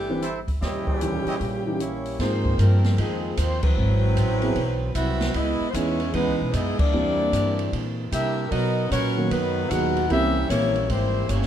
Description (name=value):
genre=jazz, big band swing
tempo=152 BPM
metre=4/4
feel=swing 65% on 8ths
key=unclear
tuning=A4 = 438 Hz
part: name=clear saxophone section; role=melody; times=0.0-11.5 s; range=E3 to F#5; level=-27 LUFS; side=left 3 dB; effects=none
part: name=upright bass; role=bass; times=0.0-11.5 s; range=G1 to C3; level=-25 LUFS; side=equal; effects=none
part: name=dark grand piano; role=accompaniment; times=0.1-10.7 s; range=D#3 to B4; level=-28 LUFS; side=right 1 dB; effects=none
part: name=clear trumpet section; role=stabs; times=0.2-1.4 s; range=E4 to E5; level=-32 LUFS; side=right 2 dB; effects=none
part: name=open jazz drum kit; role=drums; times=0.2-11.5 s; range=crash cymbal, hi-hat, kick drum, ride cymbal, snare drum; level=-30 LUFS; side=equal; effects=none
part: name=bright trombone section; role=second line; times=0.6-11.5 s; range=Bb2 to A#4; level=-28 LUFS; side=right 5 dB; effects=none
room=light reverb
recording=dark, warm production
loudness=-21 LUFS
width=side -10 dB against mid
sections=0.0-2.2 A section; 2.2-11.5 B section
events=band accent 3.6, 6.7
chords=0.0 C69; 0.6 Eb7b9; 2.2 Ab69; 3.8 Ab7alt; 5.3 Dbm9; 6.9 C9; 8.5 Bmaj7; 10.1 C7b9